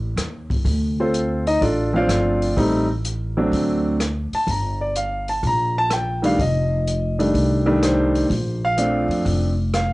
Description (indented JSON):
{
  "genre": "jazz piano trio",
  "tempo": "125 BPM",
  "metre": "4/4",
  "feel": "swing 68% on 8ths",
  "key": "unclear",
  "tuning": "A4 = 441 Hz",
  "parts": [
    { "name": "upright bass", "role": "bass", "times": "0.0-9.9 s", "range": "F1 to F2", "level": "-23 LUFS", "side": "equal", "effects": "none" },
    { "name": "open jazz drum kit", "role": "drums", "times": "0.2-9.9 s", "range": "hi-hat, kick drum, rim click", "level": "-28 LUFS", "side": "equal", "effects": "cassette tape" },
    { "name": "warm baby grand piano", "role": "melody", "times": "1.0-9.9 s", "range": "Eb3 to Bb5", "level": "-20 LUFS", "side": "equal", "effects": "cassette tape" }
  ],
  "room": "light reverb",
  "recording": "home recording on cassette, nothing above 11.0 kHz",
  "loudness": "-18 LUFS",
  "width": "side -20 dB against mid",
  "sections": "0.0-9.9 A section",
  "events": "none",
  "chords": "0.0 N.C.; 0.6 Dm7; 2.6 Am7b5; 3.5 D7; 4.5 Gm; 6.4 F13; 8.3 Bbmaj9",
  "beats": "0.16 | 0.64 1.12 1.60 2.08 | 2.56 3.03 3.51 3.99 | 4.47 4.95 5.43 5.91 | 6.38 6.86 7.34 7.82 | 8.30 8.77 9.25 9.73"
}